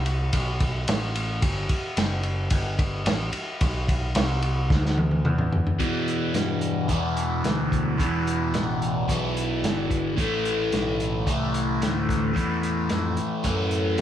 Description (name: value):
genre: blues rock power trio and southern rock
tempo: 110 BPM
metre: 4/4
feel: straight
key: E minor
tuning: A4 = 440 Hz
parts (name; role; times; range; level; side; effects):
- growling picked electric bass; bass; 0.0-14.0 s; F#1 to B2; -27 LUFS; equal; overdrive
- vintage drum kit; drums; 0.1-14.0 s; hi-hat, kick drum, ride cymbal, snare drum, toms; -26 LUFS; equal; none
- overdriven electric guitar; riff; 5.8-14.0 s; E2 to A3; -24 LUFS; left 1 dB; phaser
room: light reverb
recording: small room ambience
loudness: -22 LUFS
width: side -10 dB against mid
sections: 0.0-5.8 A section; 5.8-14.0 B section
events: drum fill 4.7-5.8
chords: 0.0 Em; 10.2 Am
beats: 0.34 0.89 | 1.43 1.98 2.52 3.07 | 3.62 4.16 4.71 5.25 | 5.80 6.35 6.90 7.44 | 7.99 8.54 9.09 9.63 | 10.18 10.73 11.27 11.82 | 12.37 12.91 13.46 14.00